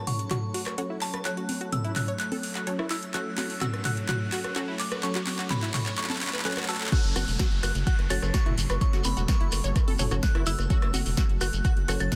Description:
progressive house; 127 BPM; 4/4; straight; F# minor; A4 = 440 Hz
glassy synth bell; melody; 0.0-12.2 s; A5 to A6; -37 LUFS; equal; chorus, tremolo, sidechain pumping, delay
airy breathy pad; sustained chords; 0.0-12.2 s; C#3 to C#5; -40 LUFS; equal; chorus, sidechain pumping
unison pluck; stabs; 0.0-12.2 s; F#3 to C#5; -39 LUFS; equal; sidechain pumping, delay
riser and downlifter; sound effects; 2.4-10.7 s; -43 LUFS; equal
tight sequenced synth; arpeggios; 0.1-12.2 s; E4 to C#5; -39 LUFS; equal; chorus, sidechain pumping, delay
deep house drum kit; drums; 0.1-12.2 s; crash cymbal, handclaps, hi-hat, snare drum; -36 LUFS; equal; overdrive, sidechain pumping on hats, sidechain pumping on cymbals
punchy analog drum machine; percussion; 0.1-12.0 s; congas, rim click, toms; -36 LUFS; equal; sidechain pumping on perc, sidechain pumping on toms, soft clipping on snare, sidechain pumping on snare
electronic kick drum; drums; 6.9-12.2 s; -27 LUFS; equal; overdrive
shekere; percussion; 6.9-12.2 s; -38 LUFS; equal
round analog bass; bass; 7.0-12.1 s; E1 to F#1; -31 LUFS; equal; sidechain pumping
light reverb; dense, heavily limited modern master; -27 LUFS; mono
0.0-6.9 A section; 6.9-12.2 B section
build-up 0.0-6.9; drum fill 0.0-6.9; filter sweep on analog synth pad 0.0-6.9; drop 6.9-12.2
0.0 F#m

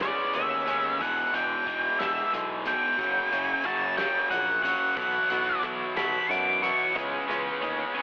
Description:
quiet-loud alternative rock; 61 BPM (dotted quarters); 6/8; straight; E lydian; A4 = 440 Hz
octave-fuzz lead guitar; melody; 0.0-6.9 s; D5 to D6; -26 LUFS; equal; distortion, slapback echo
twelve-string electric guitar; arpeggios; 0.0-8.0 s; E3 to G#4; -34 LUFS; equal; phaser, slapback echo
raw garage guitar; riff; 0.0-8.0 s; E2 to C#4; -30 LUFS; equal; overdrive, slapback echo
picked electric bass; bass; 0.0-7.8 s; E1 to F#2; -38 LUFS; equal
loose indie drum kit; drums; 0.0-7.8 s; hi-hat, kick drum, snare drum; -39 LUFS; equal
wet lush hall reverb, RT60 1.8 s, small room ambience; big arena sound, telephone sound; -24 LUFS; side -24 dB against mid
0.0-8.0 A section
lead electric guitar solo 0.0-8.0
0.0 C#m7; 1.0 Emaj7; 3.0 F#; 5.0 Bsus4; 7.0 C#m7

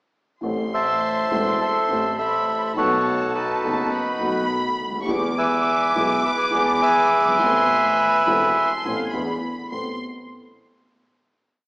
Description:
tango; 104 BPM; 4/4; rubato; A harmonic minor; A4 = 441 Hz
rich chamber violin section; second line; 0.4-10.0 s; A5 to D6; -27 LUFS; equal
dark upright piano; accompaniment; 0.4-10.0 s; E1 to A4; -26 LUFS; equal
clear double bass; bass; 0.4-10.0 s; E1 to E2; -33 LUFS; equal
bandoneon; melody; 0.7-10.0 s; D#4 to C6; -19 LUFS; equal
wet recital hall reverb, RT60 1.5 s; recorded in a church or concert hall, small speaker sound; -18 LUFS; side -24 dB against mid
0.4-9.7 A section; 9.7-11.7 final chord
0.4 Am; 2.8 B7; 5.1 E; 7.4 Amadd9; 9.1 E7; 9.7 Amadd9

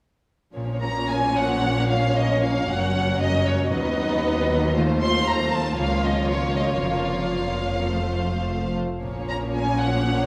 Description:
classical, dramatic, fast romantic movement for symphony orchestra; 114 BPM; 4/4; rubato; Bb minor; A4 = 443 Hz
warm symphonic violin section; second line; 0.6-10.3 s; Db4 to Db5; -30 LUFS; equal
rich symphonic viola section; accompaniment; 0.6-10.3 s; F3 to B3; -32 LUFS; equal
concert harp; arpeggios; 0.6-10.3 s; Gb2 to Db5; -32 LUFS; equal
warm studio cello section; bass; 0.6-10.3 s; Db2 to Bb2; -30 LUFS; equal
warm symphonic double bass section; bass; 0.6-10.3 s; F1 to D#2; -32 LUFS; equal
warm symphonic violin section; melody; 0.8-10.3 s; Db5 to C6; -29 LUFS; equal
moderate scoring stage reverb, RT60 1.9 s; -23 LUFS; mono
0.6-10.3 A section
0.6 Bbm; 2.7 Gb; 3.7 B/D#; 4.8 F7/Eb; 5.8 Bbm/Db; 6.8 Bbm/F; 7.9 F; 9.0 Bbm

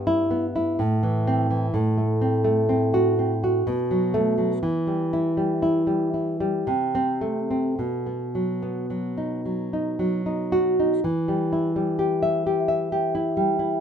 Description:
romantic piece for solo classical guitar; 53-67 BPM; 3/4; rubato; E minor; A4 = 440 Hz
nylon-string guitar; solo; 0.0-13.8 s; G2 to E5; -21 LUFS; equal
light reverb; minimal, uncompressed stereo recording; -21 LUFS; side -8 dB against mid
0.0-11.0 A section; 11.0-13.8 B section
0.0 Em/G; 0.8 Am; 1.7 F#dim/A; 3.7 B5; 4.6 Em; 6.7 Am/C; 7.8 B; 11.0 Em

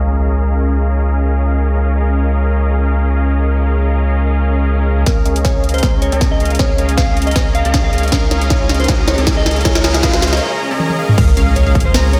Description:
future bass; 157 BPM; 4/4; swing 54% on 16ths, half-time; Db major; A4 = 437 Hz
dense compressed supersaw; riff; 0.0-12.2 s; Db4 to Bb5; -22 LUFS; equal; sidechain pumping, low-pass filter, analog delay
saturated sub bass; bass; 0.0-12.2 s; Db2; -18 LUFS; equal; sidechain pumping
impact and riser; sound effects; 0.0-0.5, 7.9-12.2 s; -25 LUFS; equal
mellow electric guitar; melody; 5.1-12.2 s; Bb4 to F5; -24 LUFS; equal; harmonic tremolo, sidechain pumping, tape echo
electronic kick drum; drums; 5.1-11.8 s; -18 LUFS; equal; overdrive
trap drum kit; drums; 5.1-12.2 s; crash cymbal, hi-hat, snare drum, toms; -21 LUFS; equal
unison pluck; arpeggios; 11.2-12.2 s; F5 to Bb5; -28 LUFS; equal; cassette tape, sidechain pumping, analog delay
moderate lush hall reverb, RT60 1.7 s; dreamy mix soaked in reverb; -14 LUFS; mono
0.0-5.1 A section; 5.1-11.2 B section; 11.2-12.2 C section
impact 0.0-0.5, 11.2-12.2; build-up 5.1-11.2; drum fill 5.1-10.4, 10.8-11.2; filter sweep on supersaw synth 5.1-11.2; break 10.4-11.2; drop 11.2-12.2
0.0 Db6

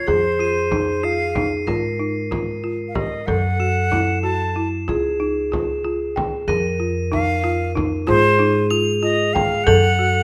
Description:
contemporary instrumental, chamber music in an uneven meter; 188 BPM (eighths); 5/8; straight; A4 = 440 Hz
breathy bright concert flute; melody; 0.0-4.7, 7.1-10.2 s; C5 to A5; -24 LUFS; equal
vibraphone with medium hard mallets; second line; 0.0-10.2 s; F4 to Bb4; -26 LUFS; equal
upright bass; bass; 0.0-10.2 s; Db2 to Ab2; -26 LUFS; equal
crotales; texture; 0.0-10.2 s; C7 to Gb7; -32 LUFS; equal
folk marimba with medium hard mallets; arpeggios; 0.1-10.2 s; Eb4 to G5; -26 LUFS; equal
frame drum; percussion; 0.1-10.0 s; -30 LUFS; equal
light reverb; close, detailed microphones; -20 LUFS; mono
0.0-10.2 A section
0.1 Fm; 1.7 Ab; 3.3 Gbm; 4.9 Db; 6.5 Fm; 8.1 Ab; 9.7 Gbm

